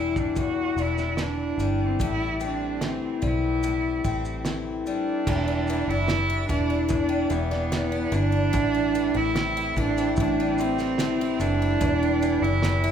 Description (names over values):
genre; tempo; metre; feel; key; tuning
acoustic pop; 73 BPM; 4/4; straight; E minor; A4 = 436 Hz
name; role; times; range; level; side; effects
rich cello; melody; 0.0-12.9 s; B3 to F#4; -26 LUFS; right 5 dB; none
picked twelve-string acoustic guitar; accompaniment; 0.0-12.9 s; E2 to E4; -27 LUFS; left 5 dB; none
vintage muted fingered electric bass; bass; 0.0-12.9 s; E1 to B1; -28 LUFS; equal; none
cloth-damped thuddy drum kit; drums; 0.2-12.8 s; crash cymbal, kick drum, shaker, snare drum; -30 LUFS; right 2 dB; none
room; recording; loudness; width
moderate recital hall reverb, RT60 1.5 s; recorded in a church or concert hall; -22 LUFS; side -8 dB against mid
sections
0.0-5.3 A section; 5.3-12.9 B section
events
none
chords
0.0 Em7; 2.0 Am7; 5.3 Em7; 8.5 Am7; 11.8 Em7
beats
0.36 1.18 | 2.00 2.82 3.64 4.45 | 5.27 6.09 6.91 7.72 | 8.54 9.36 10.18 10.99 | 11.81 12.63